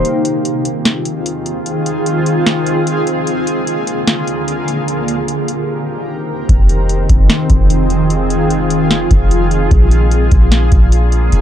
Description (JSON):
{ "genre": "hip hop, atmospheric cloud-rap", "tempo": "149 BPM", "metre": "4/4", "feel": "half-time", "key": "F dorian", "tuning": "A4 = 440 Hz", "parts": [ { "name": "granular cloud pad", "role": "sustained chords", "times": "0.0-11.4 s", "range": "D3 to Bb4", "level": "-15 LUFS", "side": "equal", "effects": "built-in reverb, sidechain pumping" }, { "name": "soft 808-style bass", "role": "bass", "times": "0.0, 6.5-11.4 s", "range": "Eb1 to Bb1", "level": "-12 LUFS", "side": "equal", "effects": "none" }, { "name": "booming analog drum machine", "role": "drums", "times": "0.0-11.4 s", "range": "hi-hat, kick drum, snare drum", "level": "-14 LUFS", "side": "equal", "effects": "none" } ], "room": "little or no reverb", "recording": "dark, warm production", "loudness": "-12 LUFS", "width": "side -10 dB against mid", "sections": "0.0-11.4 A section", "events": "break 0.0-6.5", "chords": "0.0 Fm7; 3.3 Bb7; 4.9 Eb6; 6.5 Fm7; 9.7 Bb7" }